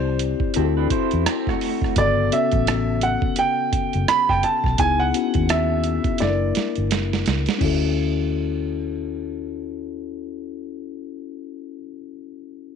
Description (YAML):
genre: R&B, neo-soul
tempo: 85 BPM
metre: 4/4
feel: swing 60% on 16ths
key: D major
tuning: A4 = 441 Hz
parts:
  - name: warm grand piano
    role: melody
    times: 0.0-6.9 s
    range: C5 to B5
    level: -22 LUFS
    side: right 4 dB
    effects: none
  - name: mellow tine electric piano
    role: accompaniment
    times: 0.0-12.8 s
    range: C#3 to D5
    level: -25 LUFS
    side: left 13 dB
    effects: none
  - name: vintage muted fingered electric bass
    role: bass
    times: 0.0-11.8 s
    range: F#1 to E2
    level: -24 LUFS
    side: equal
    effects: tube saturation
  - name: boom bap sampler-style drum kit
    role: drums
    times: 0.2-7.8 s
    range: crash cymbal, hi-hat, kick drum, rim click, snare drum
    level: -25 LUFS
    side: right 3 dB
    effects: none
  - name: electric guitar through a small old amp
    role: second line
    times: 0.6-1.9 s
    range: A3 to C5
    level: -27 LUFS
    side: right 13 dB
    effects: tremolo
room: light reverb, digital ambience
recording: 1960s-style stereo with parts hard left and right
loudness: -19 LUFS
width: side -7 dB against mid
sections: 0.0-7.6 A section; 7.6-10.4 B section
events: drum fill 6.2-7.6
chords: 0.0 Am7 (rootless); 0.5 D9; 2.0 Gmaj9#11; 4.8 C#m9; 6.2 F#7b13; 7.6 Dmaj9